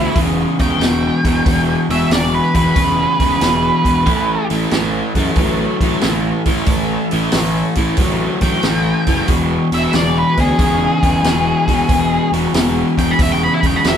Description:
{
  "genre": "blues rock power trio and southern rock",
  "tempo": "92 BPM",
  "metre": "4/4",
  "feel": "swing 67% on 8ths",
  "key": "E major",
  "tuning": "A4 = 437 Hz",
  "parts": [
    { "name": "octave-fuzz lead guitar", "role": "melody", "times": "0.0-4.5, 8.4-14.0 s", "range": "E4 to B5", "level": "-18 LUFS", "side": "equal", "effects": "distortion" },
    { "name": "overdriven tonewheel organ", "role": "sustained chords", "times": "0.0-14.0 s", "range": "G#3 to A4", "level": "-30 LUFS", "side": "right 4 dB", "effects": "none" },
    { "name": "overdriven semi-hollow guitar", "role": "riff", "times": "0.0-14.0 s", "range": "E2 to F#3", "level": "-17 LUFS", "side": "left 1 dB", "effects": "none" },
    { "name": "fuzz picked electric bass", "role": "bass", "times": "0.0-14.0 s", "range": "E1 to F#2", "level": "-22 LUFS", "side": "equal", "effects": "overdrive" },
    { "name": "vintage drum kit", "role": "drums", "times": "0.2-14.0 s", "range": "hi-hat, kick drum, snare drum", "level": "-19 LUFS", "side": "equal", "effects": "none" }
  ],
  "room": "moderate studio reverb, RT60 0.8 s",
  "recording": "band playing live in one room",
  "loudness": "-13 LUFS",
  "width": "side -8 dB against mid",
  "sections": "0.0-14.0 A section",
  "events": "lead electric guitar solo 0.0-14.0",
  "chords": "0.0 E; 4.1 A; 9.3 E"
}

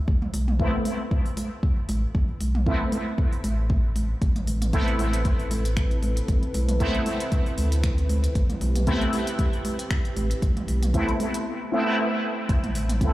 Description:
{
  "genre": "dub techno",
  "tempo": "116 BPM",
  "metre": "4/4",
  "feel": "swing 55% on 16ths",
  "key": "A minor",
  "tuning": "A4 = 440 Hz",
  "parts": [
    { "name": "soft dub sub bass", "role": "bass", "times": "0.1-13.1 s", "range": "A1 to D2", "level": "-25 LUFS", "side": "equal", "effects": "tube saturation, sidechain pumping" },
    { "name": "electronic kick drum", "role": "drums", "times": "0.1-13.1 s", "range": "none", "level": "-24 LUFS", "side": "equal", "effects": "none" },
    { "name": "electronic congas and toms", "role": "percussion", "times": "0.1-13.1 s", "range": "none", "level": "-32 LUFS", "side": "right 2 dB", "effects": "sidechain pumping on toms, sidechain pumping on perc, dub echo" },
    { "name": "deep house drum kit", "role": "drums", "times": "0.3-13.1 s", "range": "finger snaps, hi-hat", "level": "-36 LUFS", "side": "equal", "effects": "none" },
    { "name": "resonant sweep polysynth", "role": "stabs", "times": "0.6-13.1 s", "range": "A3 to E4", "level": "-28 LUFS", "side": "equal", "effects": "chorus, phaser, sidechain pumping, dub echo" },
    { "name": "dark analog pad", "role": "sustained chords", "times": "4.2-13.1 s", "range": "C4 to B4", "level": "-34 LUFS", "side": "right 1 dB", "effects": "chorus, sidechain pumping" }
  ],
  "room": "little or no reverb",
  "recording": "played on a big sound system in a bare room, large studio reverb",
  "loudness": "-22 LUFS",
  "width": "side -16 dB against mid",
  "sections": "0.0-12.5 A section",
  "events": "none",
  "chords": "0.0 Amadd9"
}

